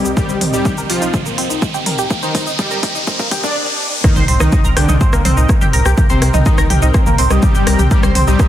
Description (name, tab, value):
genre	melodic techno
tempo	124 BPM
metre	4/4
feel	straight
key	C minor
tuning	A4 = 440 Hz
part	soft supersaw	melody	0.0-8.5 s	C3 to D5	-23 LUFS	equal	sidechain pumping, digital delay
part	big bright polysynth	second line	0.0-8.5 s	C3 to D4	-24 LUFS	left 2 dB	sidechain pumping, digital delay
part	lush unison pad	sustained chords	0.0-8.5 s	C4 to G5	-26 LUFS	equal	chorus, phaser, vintage 12-bit sampler grit, sidechain pumping
part	tight sequenced synth	arpeggios	0.0-8.5 s	Bb3 to C6	-20 LUFS	equal	chorus, phaser, sidechain pumping, digital delay
part	round analog bass	bass	0.0-8.4 s	G1 to C2	-16 LUFS	equal	sidechain pumping
part	riser and impact	sound effects	0.1-6.0 s	none	-23 LUFS	equal	none
part	techno drum kit	drums	0.1-8.5 s	hi-hat, rim click, shaker, toms	-20 LUFS	right 1 dB	overdrive, small room reverb
part	electronic kick drum	drums	0.2-8.5 s	none	-16 LUFS	equal	overdrive, small room reverb
room	light reverb, digital ambience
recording	dense, heavily limited modern master, high-pass filter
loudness	-12 LUFS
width	side -12 dB against mid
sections	0.0-4.0 A section; 4.0-8.5 B section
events	build-up 0.0-4.0; filter sweep on synth arpeggio sound 0.0-4.0; filter sweep on analog synth pad 0.0-4.0; filter sweep 0.0-4.0; riser 0.1-4.0; drum fill 0.2-3.6; drop 4.0-8.5; impact 4.0-6.0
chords	0.0 Cm7